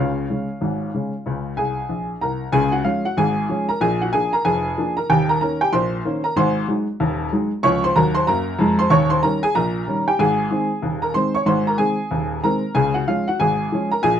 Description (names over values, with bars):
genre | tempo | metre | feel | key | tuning
ragtime piano | 94 BPM | 2/4 | swing 58% on 16ths | Db major | A4 = 440 Hz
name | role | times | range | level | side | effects
clear upright piano | solo | 0.0-14.2 s | Eb1 to Db6 | -18 LUFS | equal | none
room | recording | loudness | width
moderate studio reverb, RT60 0.5 s | dark, warm production | -18 LUFS | side -9 dB against mid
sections
0.0-2.5 A section; 2.5-14.2 B section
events
upright piano fill 1.6-2.5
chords
0.0 Db; 3.8 Bb7; 5.1 Eb7; 6.4 Ab7; 7.6 Db; 8.9 Eb7; 10.2 Ab; 12.7 Db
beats
0.61 | 1.26 1.90 | 2.54 3.18 | 3.82 4.45 | 5.09 5.73 | 6.36 7.00 | 7.63 8.27 | 8.91 9.54 | 10.18 10.82 | 11.47 12.11 | 12.74 13.38 | 14.02